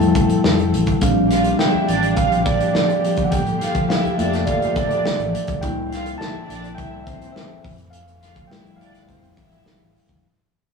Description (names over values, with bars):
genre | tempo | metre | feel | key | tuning
lush 1970s-style soul | 104 BPM | 4/4 | straight | F major | A4 = 440 Hz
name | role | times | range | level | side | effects
mellow tine electric piano | accompaniment | 0.0-10.3 s | G3 to A5 | -21 LUFS | equal | none
rich studio string section | sustained chords | 0.0-10.2 s | Bb2 to A4 | -27 LUFS | right 1 dB | none
vintage muted fingered electric bass | bass | 0.0-10.2 s | E1 to C2 | -26 LUFS | equal | none
modern studio drum kit | drums | 0.0-10.2 s | hi-hat, kick drum, snare drum | -22 LUFS | left 1 dB | none
warm studio violin section | second line | 1.3-9.9 s | C4 to F5 | -26 LUFS | right 4 dB | none
room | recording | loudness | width
wet studio reverb, RT60 0.6 s | rough rehearsal-room recording, tube saturation, small room ambience | -16 LUFS | side -5 dB against mid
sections
0.0-10.2 A section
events
fade-out 0.0-10.2; tine electric piano solo 0.0-10.2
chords
0.0 Fmaj7; 1.0 Bb6; 3.3 Gm9; 5.6 C9; 7.6 Fmaj7